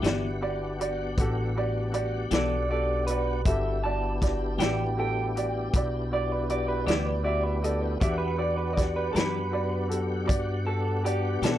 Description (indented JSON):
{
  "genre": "slow blues",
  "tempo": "53 BPM (dotted quarters)",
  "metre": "12/8",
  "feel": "straight",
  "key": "E minor",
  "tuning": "A4 = 440 Hz",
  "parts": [
    { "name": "electric guitar through a small old amp", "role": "second line", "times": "0.0-11.6 s", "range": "E4 to A5", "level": "-31 LUFS", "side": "right 3 dB", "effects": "spring reverb" },
    { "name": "clear upright piano", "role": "accompaniment", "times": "0.0-11.6 s", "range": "F#4 to E5", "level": "-32 LUFS", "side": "right 1 dB", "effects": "none" },
    { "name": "semi-hollow electric guitar", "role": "accompaniment", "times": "0.0-11.6 s", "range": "E3 to G4", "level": "-32 LUFS", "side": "left 12 dB", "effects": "tremolo" },
    { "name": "tonewheel organ", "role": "sustained chords", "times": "0.0-11.6 s", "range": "B3 to F#5", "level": "-35 LUFS", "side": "left 4 dB", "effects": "slow rotary speaker, overdrive, chorus vibrato" },
    { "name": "upright bass", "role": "bass", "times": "0.0-11.6 s", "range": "G1 to B2", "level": "-30 LUFS", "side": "equal", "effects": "none" },
    { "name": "vintage drum kit", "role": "drums", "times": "0.0-11.6 s", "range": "hi-hat, kick drum, snare drum", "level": "-27 LUFS", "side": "equal", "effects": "none" }
  ],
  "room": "little or no reverb",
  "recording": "dry, close 1970s-style studio recording",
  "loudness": "-25 LUFS",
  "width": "side -12 dB against mid",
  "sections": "0.0-11.6 A section",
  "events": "clean electric guitar solo 0.0-11.6",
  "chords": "0.0 Em7",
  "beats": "0.03 1.18 2.32 | 3.46 4.59 5.73 6.87 | 8.01 9.15 10.28 11.42"
}